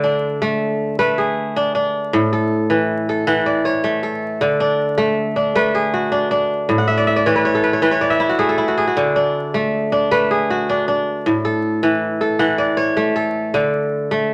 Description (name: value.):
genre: west african traditional.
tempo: 105 BPM (dotted quarters).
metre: 12/8.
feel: straight.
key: D lydian.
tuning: A4 = 435 Hz.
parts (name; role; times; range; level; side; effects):
kora; solo; 0.0-14.3 s; A2 to F#5; -18 LUFS; equal; none.
room: moderate studio reverb, RT60 0.8 s.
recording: vinyl crackle.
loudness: -18 LUFS.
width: mono.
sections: 0.0-14.3 A section.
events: kora fill 6.8-9.0.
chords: 0.0 D5; 2.1 A; 4.4 D; 6.7 A5; 9.0 D; 11.3 A; 13.5 D5.